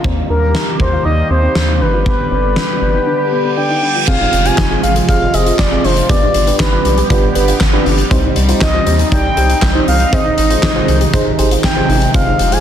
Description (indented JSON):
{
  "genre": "synth-pop",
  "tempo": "119 BPM",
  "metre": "4/4",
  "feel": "straight",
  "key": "unclear",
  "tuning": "A4 = 442 Hz",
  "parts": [
    { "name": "sweeping resonant pad", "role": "sustained chords", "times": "0.0-12.6 s", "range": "C3 to G4", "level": "-20 LUFS", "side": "equal", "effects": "chorus, phaser" },
    { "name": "soft round pluck", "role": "arpeggios", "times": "0.0-12.6 s", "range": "B3 to Ab4", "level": "-24 LUFS", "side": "left 3 dB", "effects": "chorus, digital delay" },
    { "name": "round analog bass", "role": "bass", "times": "0.0-12.6 s", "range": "F1 to Eb2", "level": "-16 LUFS", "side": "equal", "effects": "none" },
    { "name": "huge arena drum kit", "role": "drums", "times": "0.0-12.6 s", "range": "crash cymbal, handclaps, hi-hat, kick drum, snare drum", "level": "-16 LUFS", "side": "equal", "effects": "none" },
    { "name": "expressive synth lead", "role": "melody", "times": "0.3-12.6 s", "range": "Bb4 to Ab5", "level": "-17 LUFS", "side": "left 1 dB", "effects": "chorus, digital delay" },
    { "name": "reverse cymbal", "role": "sound effects", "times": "3.3-4.1 s", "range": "none", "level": "-22 LUFS", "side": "right 7 dB", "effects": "none" },
    { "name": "FM electric piano with tremolo", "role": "accompaniment", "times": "4.1-12.6 s", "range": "C4 to D5", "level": "-20 LUFS", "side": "right 3 dB", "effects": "phaser" }
  ],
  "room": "light reverb, studio ambience",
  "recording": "dense, heavily limited modern master",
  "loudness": "-11 LUFS",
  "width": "side -9 dB against mid",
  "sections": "0.0-4.1 A section; 4.1-12.6 B section",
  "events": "reverse cymbal 3.3-4.1",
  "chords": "0.0 Eb; 1.8 G; 4.1 Fm; 6.1 G; 8.1 Cm; 10.1 Ab"
}